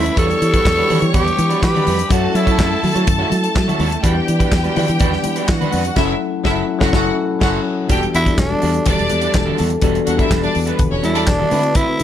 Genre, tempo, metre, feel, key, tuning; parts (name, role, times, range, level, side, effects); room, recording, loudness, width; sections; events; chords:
disco; 124 BPM; 4/4; straight; E dorian; A4 = 440 Hz
growling tenor saxophone; melody; 0.0-3.1, 8.2-12.0 s; G3 to A4; -19 LUFS; equal
clear studio string section; second line; 0.0-11.2 s; B3 to C#6; -23 LUFS; equal
bell-like tine electric piano; accompaniment; 0.0-12.0 s; D3 to F#5; -23 LUFS; moving between left 12 dB and left 3 dB; auto-pan
electric guitar through a small old amp; accompaniment; 0.0-12.0 s; G3 to C#5; -25 LUFS; right 7 dB; lush chorus
mellow French horn section; sustained chords; 0.0-12.0 s; D3 to B4; -26 LUFS; right 1 dB
fingered electric bass; bass; 0.0-12.0 s; E1 to F#3; -20 LUFS; equal
damped 70s drum kit; drums; 0.1-12.0 s; crash cymbal, handclaps, hi-hat, kick drum, snare drum; -19 LUFS; equal
congas; percussion; 0.2-12.0 s; -27 LUFS; left 6 dB
studio reverb; -14 LUFS; side -10 dB against mid
0.0-7.9 A section; 7.9-12.0 B section
band accent 6.0-7.9; tenor saxophone solo 7.9-12.0
0.2 Em9; 2.1 F#m7; 4.0 Em9; 6.0 F#m7; 7.9 Em11; 11.5 D13